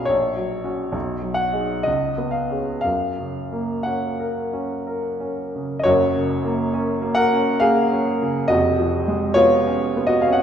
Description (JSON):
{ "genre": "classical, romantic nocturne for solo piano", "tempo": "59-73 BPM", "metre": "3/4", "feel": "rubato", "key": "F# major", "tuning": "A4 = 439 Hz", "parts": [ { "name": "warm grand piano", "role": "solo", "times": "0.0-10.4 s", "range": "E#1 to C#6", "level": "-18 LUFS", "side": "equal", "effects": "none" } ], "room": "moderate scoring stage reverb, RT60 1.6 s", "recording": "minimal, uncompressed stereo recording", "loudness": "-19 LUFS", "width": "side -8 dB against mid", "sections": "0.0-5.9 A section; 5.9-10.4 A section", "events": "none", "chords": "0.1 F#/A#; 0.9 G#m7/B; 1.9 C#7; 2.9 F#; 8.5 C#7/E#", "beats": "| 0.11 0.94 1.86 | 2.85 3.86 4.88 | 5.87 6.74 7.62 | 8.51 9.38 10.26" }